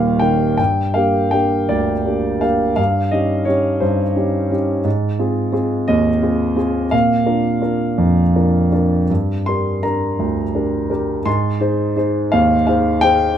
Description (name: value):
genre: classical, lyrical solo piano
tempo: 53-59 BPM (dotted quarters)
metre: 6/8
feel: rubato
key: unclear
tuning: A4 = 440 Hz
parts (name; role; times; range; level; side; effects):
- warm concert grand piano; solo; 0.0-13.4 s; Eb1 to C6; -15 LUFS; equal; none
room: moderate studio reverb, RT60 0.5 s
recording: minimal, uncompressed stereo recording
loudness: -15 LUFS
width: side -9 dB against mid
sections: 0.6-13.4 A section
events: none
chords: 0.0 Eb; 0.6 Gm; 2.8 Eb7/G; 4.9 Ab6; 6.9 Bb; 9.1 Gm; 11.3 Ab